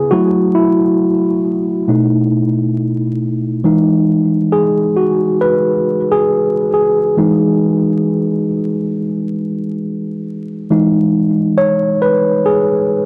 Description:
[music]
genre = hip hop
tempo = 68 BPM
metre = 4/4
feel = swing 59% on 16ths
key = E major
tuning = A4 = 440 Hz
[part]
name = tine electric piano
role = solo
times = 0.0-13.1 s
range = B2 to C#5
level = -14 LUFS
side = equal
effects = overdrive, cassette tape, low-pass filter
[sound]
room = moderate studio reverb, RT60 0.6 s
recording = dry, gritty hardware recording, vinyl crackle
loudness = -14 LUFS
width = mono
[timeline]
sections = 0.0-10.7 A section; 10.7-13.1 B section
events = tine electric piano solo 0.0-10.7, 10.7-13.1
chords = 0.1 F#m7; 1.9 B7; 3.6 Emaj7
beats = | 0.12 1.00 1.88 2.76 | 3.65 4.53 5.41 6.29 | 7.17 8.06 8.94 9.82 | 10.70 11.59 12.47

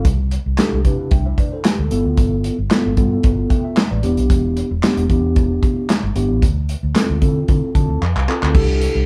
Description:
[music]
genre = early-eighties boogie funk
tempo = 113 BPM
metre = 4/4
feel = straight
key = unclear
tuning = A4 = 442 Hz
[part]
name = mellow tine electric piano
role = accompaniment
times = 0.0-9.1 s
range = B3 to A5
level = -23 LUFS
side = equal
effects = none
[part]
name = vintage muted fingered electric bass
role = bass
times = 0.0-9.0 s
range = E1 to D3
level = -22 LUFS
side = equal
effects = none
[part]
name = modern studio drum kit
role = drums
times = 0.0-8.9 s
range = crash cymbal, handclaps, hi-hat, kick drum, snare drum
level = -20 LUFS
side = equal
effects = none
[sound]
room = light reverb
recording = band playing live in one room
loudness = -17 LUFS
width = mono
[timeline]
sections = 0.0-8.5 A section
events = tine electric piano fill 7.5-8.5; drum fill 8.0-8.5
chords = 0.1 C6; 1.9 G13; 4.0 Em7; 6.4 Dm9; 8.5 C6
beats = | 0.05 0.58 1.11 1.64 | 2.17 2.71 3.24 3.77 | 4.30 4.83 5.36 5.89 | 6.42 6.95 7.49 8.02 | 8.55

